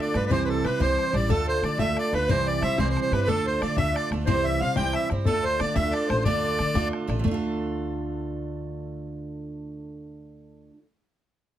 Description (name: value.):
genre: celtic folk, Celtic jig.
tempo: 121 BPM (dotted quarters).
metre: 6/8.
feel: straight.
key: D dorian.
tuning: A4 = 445 Hz.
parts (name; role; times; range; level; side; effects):
accordion; melody; 0.0-6.9 s; A4 to G5; -26 LUFS; right 1 dB; none.
musette accordion; second line; 0.0-6.9 s; A4 to G5; -32 LUFS; left 4 dB; none.
picked steel-string acoustic guitar; accompaniment; 0.0-10.8 s; C3 to C5; -28 LUFS; right 4 dB; none.
upright bass; bass; 0.1-10.7 s; A1 to D3; -30 LUFS; left 1 dB; none.
bodhran; percussion; 0.1-7.4 s; none; -30 LUFS; left 4 dB; none.
room: moderate small room reverb, RT60 0.5 s.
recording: none.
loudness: -22 LUFS.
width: side -11 dB against mid.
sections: 0.0-7.2 A section; 7.2-9.2 B section.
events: none.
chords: 0.3 C; 1.3 Dm; 2.3 C; 3.3 Dm; 4.3 C; 5.3 Dm.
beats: | 0.31 0.80 | 1.30 1.79 | 2.29 2.78 | 3.28 3.77 | 4.27 4.76 | 5.26 5.76 | 6.25 6.75 | 7.25 7.74 | 8.24 8.73.